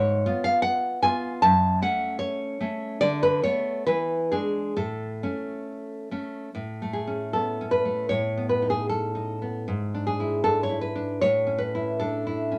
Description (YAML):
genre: romantic piece for solo classical guitar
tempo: 65-79 BPM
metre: 2/4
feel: rubato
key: A major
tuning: A4 = 441 Hz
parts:
  - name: nylon-string guitar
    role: solo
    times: 0.0-12.6 s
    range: F#2 to A5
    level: -26 LUFS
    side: equal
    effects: none
room: light reverb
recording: none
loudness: -26 LUFS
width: mono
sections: 0.0-6.5 A section; 6.5-12.6 B section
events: none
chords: 0.0 G#m6; 1.4 F#m; 3.0 Bm7/D; 3.9 E7; 4.8 A; 8.1 B7/A; 9.7 E7/G#; 11.2 A